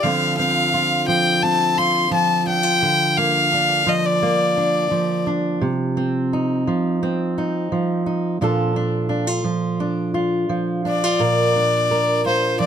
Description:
acoustic folk-pop ballad; 86 BPM; 4/4; straight; A4 = 440 Hz
clear violin; melody; 0.0-5.3, 10.9-12.7 s; C5 to C6; -18 LUFS; left 3 dB
fingerpicked steel-string acoustic guitar; accompaniment; 0.0-12.7 s; Bb2 to Bb4; -20 LUFS; right 2 dB
little or no reverb; close, detailed microphones; -17 LUFS; side -8 dB against mid
0.0-11.2 A section; 11.2-12.7 B section
0.0 Dm7; 2.8 Bb/D; 5.6 F5/C; 8.4 Bbmaj7; 11.2 Bb
| 0.02 0.72 1.42 2.12 | 2.82 3.52 4.21 4.91 | 5.61 6.31 7.00 7.70 | 8.40 9.10 9.80 10.50 | 11.20 11.90 12.60

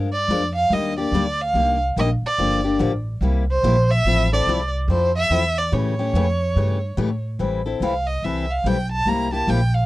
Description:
acoustic string swing (jazz manouche); 144 BPM; 4/4; swing 62% on 8ths; A4 = 441 Hz
picked steel-string acoustic guitar; accompaniment; 0.0-9.6 s; C3 to Bb4; -23 LUFS; left 4 dB
upright bass; bass; 0.0-9.9 s; G1 to A2; -22 LUFS; equal
rich violin; melody; 0.1-9.9 s; C5 to Bb5; -22 LUFS; right 2 dB
little or no reverb; dry, close 1970s-style studio recording; -18 LUFS; side -17 dB against mid
0.0-7.4 A section; 7.4-9.9 B section
violin solo 7.4-9.9
0.0 Bb13; 0.7 Ebmaj7; 2.4 Gm9; 3.2 C7; 4.1 Fmaj7; 5.7 A7b13; 7.4 Am7; 9.1 C7
0.29 | 0.71 1.13 1.55 1.96 | 2.38 2.80 3.22 3.64 | 4.05 4.47 4.89 5.31 | 5.72 6.14 6.56 6.97 | 7.39 7.81 8.22 8.64 | 9.06 9.48

